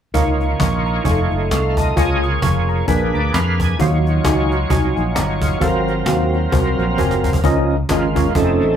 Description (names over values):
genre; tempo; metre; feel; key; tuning
uptempo gospel; 132 BPM; 4/4; swing 58% on 8ths; Db major; A4 = 440 Hz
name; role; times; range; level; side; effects
mellow tine electric piano; accompaniment; 0.1-8.7 s; Ab2 to F6; -21 LUFS; equal; fast stereo tremolo
overdriven tonewheel organ; sustained chords; 0.1-8.8 s; F3 to Ab5; -20 LUFS; right 2 dB; slow rotary speaker, chorus vibrato
fingered electric bass; bass; 0.1-8.8 s; F1 to F2; -20 LUFS; left 1 dB; none
cajon; drums; 0.1-8.7 s; none; -21 LUFS; equal; none
room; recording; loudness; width
moderate studio reverb, RT60 0.6 s; band playing live in one room; -15 LUFS; side -9 dB against mid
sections
0.1-7.4 A section; 7.4-8.8 B section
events
tonewheel organ fill 2.9-3.8; drum fill 7.0-7.4; tonewheel organ solo 7.4-8.8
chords
0.1 Db69; 1.1 F7b13; 2.0 Bbm7/Db; 2.9 Bb7b9; 3.8 Ebm9; 5.6 Ab13; 7.4 Db69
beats
| 0.14 0.60 1.06 1.51 | 1.97 2.42 2.88 3.34 | 3.79 4.25 4.71 5.16 | 5.62 6.08 6.53 6.99 | 7.44 7.90 8.36